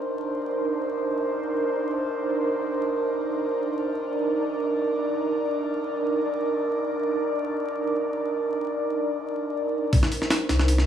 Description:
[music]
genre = drum and bass, jungle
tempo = free time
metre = none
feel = none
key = C minor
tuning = A4 = 440 Hz
[part]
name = airy breathy pad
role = sustained chords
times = 0.0-10.9 s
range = D4 to D5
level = -24 LUFS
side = right 1 dB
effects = chorus
[part]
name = jungle sampler-style drum kit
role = drums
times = 9.9-10.9 s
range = hi-hat, kick drum, snare drum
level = -22 LUFS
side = equal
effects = none
[part]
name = saturated sub bass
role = bass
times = 10.5-10.9 s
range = C2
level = -20 LUFS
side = equal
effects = none
[sound]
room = moderate lush hall reverb, RT60 1.6 s, digital ambience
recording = vinyl crackle, small room ambience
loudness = -24 LUFS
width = side -9 dB against mid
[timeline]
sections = 0.0-9.9 A section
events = none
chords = 0.0 Cm9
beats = free time

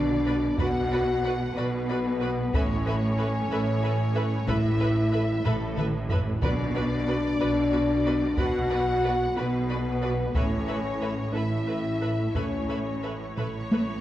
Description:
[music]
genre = cinematic, epic orchestral film score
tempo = 61 BPM (dotted quarters)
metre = 6/8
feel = straight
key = B minor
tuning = A4 = 440 Hz
[part]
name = clear symphonic violin section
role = melody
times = 0.0-14.0 s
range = A4 to F#5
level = -37 LUFS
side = left 2 dB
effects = none
[part]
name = rich symphonic viola section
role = accompaniment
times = 0.0-13.8 s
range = F#4 to B4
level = -35 LUFS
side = right 1 dB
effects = none
[part]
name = mellow French horn section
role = sustained chords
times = 0.0-13.4 s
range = A3 to F#4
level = -28 LUFS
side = left 2 dB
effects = none
[part]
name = clear symphonic double bass section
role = bass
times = 0.0-14.0 s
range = A1 to B1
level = -31 LUFS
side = right 2 dB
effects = none
[part]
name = rich symphonic cello section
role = bass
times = 0.0-14.0 s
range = A2 to B2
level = -30 LUFS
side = right 1 dB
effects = none
[part]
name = rich symphonic violin section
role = second line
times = 0.3-13.8 s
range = D5 to B5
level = -40 LUFS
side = left 1 dB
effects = none
[part]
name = taiko ensemble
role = drums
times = 0.6-14.0 s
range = none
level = -29 LUFS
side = equal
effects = none
[part]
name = timpani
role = percussion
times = 6.4-7.4 s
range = B2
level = -34 LUFS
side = equal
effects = none
[sound]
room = wet scoring stage reverb, RT60 1.7 s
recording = worn, warbling old tape, cassette tape, warbly pitch drift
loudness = -24 LUFS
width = side -13 dB against mid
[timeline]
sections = 0.0-14.0 A section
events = drum fill 5.5-6.4, 13.4-14.0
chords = 0.0 Bm; 2.5 Aadd9; 6.4 Bm; 10.3 Aadd9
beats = | 0.58 1.55 | 2.53 3.51 | 4.48 5.45 | 6.43 7.40 | 8.38 9.36 | 10.34 11.34 | 12.34 13.37

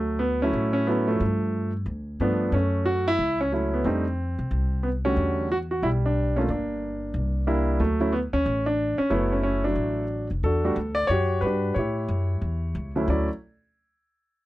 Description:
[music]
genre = jazz piano trio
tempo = 182 BPM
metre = 4/4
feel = swing 63% on 8ths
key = D major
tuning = A4 = 440 Hz
[part]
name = warm concert grand piano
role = melody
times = 0.0-13.3 s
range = D2 to D5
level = -24 LUFS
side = equal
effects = none
[part]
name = upright bass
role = bass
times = 0.0-13.3 s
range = F1 to C3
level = -27 LUFS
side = equal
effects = none
[sound]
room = little or no reverb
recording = dry, close 1970s-style studio recording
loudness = -22 LUFS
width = side -16 dB against mid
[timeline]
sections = 0.0-10.4 A section; 10.4-13.1 B section; 13.1-14.4 C section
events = none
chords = 0.0 Dmaj7; 1.2 G9; 2.5 F#m7; 3.8 F69; 5.2 Em11; 6.5 Gm; 7.1 C9; 7.8 Dmaj7; 10.4 Em11; 11.8 A7; 13.1 N.C.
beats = 0.21 0.54 0.87 | 1.20 1.53 1.86 2.19 | 2.53 2.86 3.19 3.52 | 3.85 4.18 4.51 4.84 | 5.17 5.50 5.83 6.16 | 6.49 6.81 7.14 7.47 | 7.80 8.13 8.46 8.79 | 9.12 9.45 9.78 10.11 | 10.44 10.77 11.10 11.43 | 11.76 12.09 12.42 12.75 | 13.08

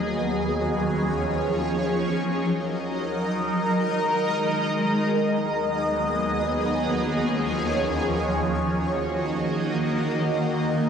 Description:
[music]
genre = hip hop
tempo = free time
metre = none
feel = none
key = Eb minor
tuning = A4 = 437 Hz
[part]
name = shimmering ambient pad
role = solo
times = 0.0-10.9 s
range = Eb2 to Eb5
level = -22 LUFS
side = equal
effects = chorus, built-in reverb, phaser, cassette tape, analog delay
[sound]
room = light reverb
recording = home recording on cassette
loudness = -22 LUFS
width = side -7 dB against mid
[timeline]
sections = 0.0-5.0 A section; 5.0-10.9 A section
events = none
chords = 0.1 Db/Eb; 1.7 Ebm; 3.4 Absus2/Eb; 5.0 B6/D#; 6.6 Db/Eb; 8.3 Ebm; 9.9 Absus2/Eb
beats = free time

